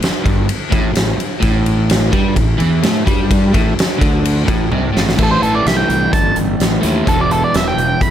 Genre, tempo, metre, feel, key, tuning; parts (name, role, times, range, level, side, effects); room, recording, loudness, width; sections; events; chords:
blues rock power trio and southern rock; 128 BPM; 4/4; straight; A minor; A4 = 438 Hz
crunchy overdriven guitar; riff; 0.0-8.1 s; E2 to A3; -17 LUFS; equal
fuzz fingered electric bass; bass; 0.0-8.1 s; E1 to A2; -19 LUFS; equal; overdrive
huge arena drum kit; drums; 0.0-8.1 s; crash cymbal, hi-hat, kick drum, ride cymbal, snare drum, toms; -16 LUFS; equal
octave-fuzz lead guitar; melody; 5.2-8.1 s; A4 to B5; -16 LUFS; right 2 dB; distortion
light reverb; -12 LUFS; side -10 dB against mid
0.0-5.2 A section; 5.2-8.1 B section
drum fill 4.7-5.2
0.0 N.C.; 5.2 Am; 7.1 Em